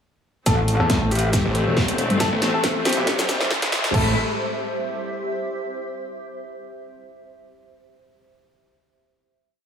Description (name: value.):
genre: heavy wobble dubstep.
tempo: 138 BPM.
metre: 4/4.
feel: swing 54% on 16ths, half-time.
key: A minor.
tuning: A4 = 440 Hz.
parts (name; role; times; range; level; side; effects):
warm grand piano; melody; 0.5-4.1 s; A3 to A4; -27 LUFS; left 1 dB; low-pass filter, tape echo.
clear studio string section; sustained chords; 0.5-4.1 s; A2 to E4; -28 LUFS; left 3 dB; sidechain pumping.
metallic wobble bass; bass; 0.5-4.1 s; G1 to A1; -21 LUFS; equal; distortion, chorus, overdrive.
big-room dance drum kit; drums; 0.5-4.0 s; crash cymbal, hi-hat, shaker, snare drum; -24 LUFS; equal; none.
electronic kick drum; drums; 0.5-4.0 s; none; -25 LUFS; equal; none.
riser; sound effects; 2.3-3.9 s; none; -30 LUFS; equal; none.
granular cloud pad; texture; 1.9-5.6 s; G4 to E5; -30 LUFS; right 1 dB; built-in reverb, sidechain pumping.
snarling distorted saw bass; bass; 0.8-3.9 s; E1 to E2; -24 LUFS; equal; distortion, overdrive.
room: moderate lush hall reverb, RT60 1.9 s, digital ambience.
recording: high-pass filter, studio ambience.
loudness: -19 LUFS.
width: side -7 dB against mid.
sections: 0.5-3.9 build; 3.9-5.7 final chord.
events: build-up 0.5-3.9; drum fill 0.5-3.9; filter sweep on grand piano 0.5-3.9; filter sweep 0.5-3.9; riser 2.3-3.9.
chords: 0.5 Am.